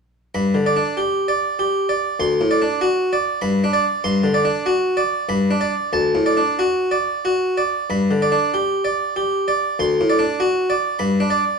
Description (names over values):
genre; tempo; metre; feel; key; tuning
classical, baroque-style suite movement for harpsichord; 96 BPM; 3/4; rubato; G major; A4 = 440 Hz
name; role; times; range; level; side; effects
harpsichord; solo; 0.3-11.6 s; D2 to C6; -17 LUFS; equal; none
room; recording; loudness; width
moderate recital hall reverb, RT60 1.2 s; dark, warm production, faint mains hum; -17 LUFS; side -5 dB against mid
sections
0.3-11.6 A section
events
none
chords
0.3 G; 2.2 D7; 3.4 G; 4.0 D7/G; 5.3 G; 5.9 D; 7.9 G; 9.8 D7; 11.0 G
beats
| 0.34 0.97 1.59 | 2.20 2.81 3.43 | 4.04 4.67 5.30 | 5.94 6.60 7.25 | 7.90 8.54 9.16 | 9.79 10.40 11.01